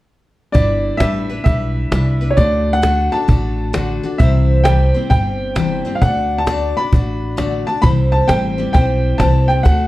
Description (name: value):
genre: honky-tonk and classic country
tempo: 132 BPM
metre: 4/4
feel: swing 65% on 8ths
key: G major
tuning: A4 = 440 Hz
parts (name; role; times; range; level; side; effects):
- bright upright piano; melody; 0.5-9.9 s; C#5 to B5; -20 LUFS; equal; none
- picked steel-string acoustic guitar; accompaniment; 0.5-9.9 s; C3 to D5; -21 LUFS; left 2 dB; none
- upright bass; bass; 0.5-9.9 s; G1 to D2; -17 LUFS; equal; none
- cajon; drums; 0.5-9.8 s; none; -16 LUFS; equal; none
room: light reverb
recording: dark, warm production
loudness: -13 LUFS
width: side -17 dB against mid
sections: 0.6-9.9 A section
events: none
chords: 0.6 G6; 2.4 D; 4.2 C; 6.0 D; 7.8 C